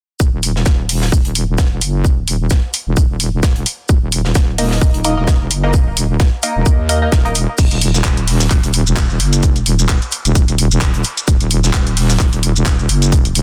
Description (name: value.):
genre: bass house.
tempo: 130 BPM.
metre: 4/4.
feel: swing 56% on 16ths.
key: Eb minor.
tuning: A4 = 441 Hz.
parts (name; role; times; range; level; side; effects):
wobble bass; bass; 0.2-13.4 s; Eb1 to Eb2; -18 LUFS; equal; chorus, tube saturation, sidechain pumping.
electronic kick drum; drums; 0.2-13.2 s; none; -16 LUFS; equal; studio reverb.
tight metal drum kit; drums; 0.2-13.4 s; hi-hat, shaker, snare drum; -28 LUFS; equal; sidechain pumping on hats, high-pass filter on hats, studio reverb, high-pass filter on snare, sidechain pumping on perc, high-pass filter on perc, high-pass filter on room.
garage drum kit; drums; 0.4-13.4 s; crash cymbal, handclaps, hi-hat, shaker; -21 LUFS; equal; studio reverb, soft clipping on snare.
band-passed chord stab; stabs; 4.6-7.3 s; Bb3 to Eb5; -23 LUFS; equal; phaser, analog chorus, sidechain pumping, dub echo.
room: small room ambience.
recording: dense, heavily limited modern master.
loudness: -15 LUFS.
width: mono.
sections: 0.2-7.6 A section; 7.6-13.4 B section.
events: none.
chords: 0.2 Eb5.